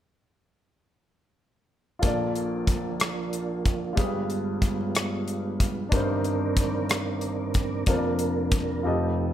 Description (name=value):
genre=slow gospel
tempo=62 BPM (dotted quarters)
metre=6/8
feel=straight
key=Bb major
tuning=A4 = 440 Hz
part: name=warm upright piano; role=accompaniment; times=2.0-9.3 s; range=F1 to Eb5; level=-28 LUFS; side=left 2 dB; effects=none
part: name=mellow tonewheel organ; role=sustained chords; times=2.0-9.3 s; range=G2 to D5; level=-29 LUFS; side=right 4 dB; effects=fast rotary speaker, chorus vibrato
part: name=modern studio drum kit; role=drums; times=2.0-8.7 s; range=hi-hat, kick drum, rim click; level=-26 LUFS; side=equal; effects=none
room=light reverb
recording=none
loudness=-24 LUFS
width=side -11 dB against mid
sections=2.0-9.3 A section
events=none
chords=2.0 Bbmaj7; 4.0 G7b9; 5.9 Cm9/G; 7.9 Bb/F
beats=| 2.03 3.00 | 3.98 4.95 | 5.93 6.90 | 7.87 8.85